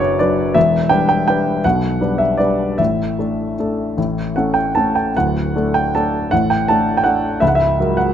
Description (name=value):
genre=classical, piano waltz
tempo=149-174 BPM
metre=3/4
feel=rubato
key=D major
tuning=A4 = 440 Hz
part: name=clear grand piano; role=solo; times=0.0-8.1 s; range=C#1 to A5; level=-14 LUFS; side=equal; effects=none
room=light reverb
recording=close, detailed microphones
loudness=-14 LUFS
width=side -9 dB against mid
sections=0.0-8.1 A section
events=none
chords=0.0 Bm; 0.6 Em7; 2.8 Asus4; 4.0 A; 5.1 D; 7.4 F#7/C#